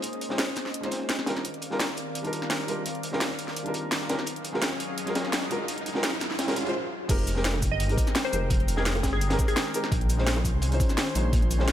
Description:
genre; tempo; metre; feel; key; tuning
liquid drum and bass; 170 BPM; 4/4; straight; F minor; A4 = 440 Hz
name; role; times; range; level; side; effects
airy breathy pad; sustained chords; 0.0-11.7 s; Eb3 to G5; -35 LUFS; left 1 dB; chorus, sidechain pumping
crunchy breakbeat drum kit; drums; 0.0-11.7 s; hi-hat, snare drum; -34 LUFS; equal; high-pass filter on hats, high-pass filter on snare, high-pass filter on room
drum and bass drum kit; drums; 0.0-11.7 s; crash cymbal, hi-hat, shaker, snare drum; -31 LUFS; equal; overdrive
felt-muted upright piano; accompaniment; 0.3-11.7 s; G3 to Db5; -32 LUFS; equal; ping-pong delay
riser; sound effects; 3.9-6.7 s; none; -37 LUFS; right 2 dB; none
dark detuned saw bass; bass; 7.1-11.7 s; F1 to C2; -26 LUFS; equal; none
electronic kick drum; drums; 7.1-11.4 s; none; -26 LUFS; equal; none
bongos; percussion; 7.5-11.7 s; none; -38 LUFS; right 4 dB; none
glassy wavetable pluck; melody; 7.7-10.0 s; Ab4 to Eb5; -32 LUFS; left 2 dB; chorus, ping-pong delay
room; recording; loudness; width
light reverb, small room ambience; none; -24 LUFS; side -11 dB against mid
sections
0.0-7.1 A section; 7.1-11.7 B section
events
build-up 0.0-7.1; filter sweep on analog synth pad 0.0-7.1; riser 3.9-6.7; stop 6.7-7.1; drop 7.1-11.7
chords
0.0 Bbm11; 1.3 Cm11; 4.3 Ebm11; 7.1 Fm11; 9.9 Bbm11

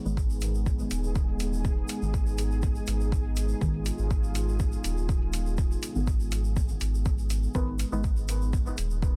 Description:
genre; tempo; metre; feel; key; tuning
dub techno; 122 BPM; 4/4; straight; G# dorian; A4 = 442 Hz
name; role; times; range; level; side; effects
dark analog pad; sustained chords; 0.0-9.2 s; G#3 to G#4; -39 LUFS; equal; chorus, sidechain pumping
flickering grainy texture; texture; 0.6-7.6 s; G#4; -47 LUFS; equal; built-in reverb, sidechain pumping
deep mellow chord stab; stabs; 0.1-8.0 s; D#3 to B3; -39 LUFS; equal; chorus, phaser, sidechain pumping, dub echo
pure sine sub bass; bass; 0.1-9.2 s; D#1 to G#1; -31 LUFS; equal; sidechain pumping
tube shaker; percussion; 0.1-9.1 s; none; -46 LUFS; equal; none
electronic kick drum; drums; 0.2-9.1 s; none; -30 LUFS; equal; none
electronic hi-hat; drums; 0.4-8.9 s; none; -39 LUFS; equal; none
room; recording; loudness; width
little or no reverb; dense, heavily limited modern master; -28 LUFS; mono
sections
0.0-7.5 A section; 7.5-9.2 A section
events
none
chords
0.0 G#m

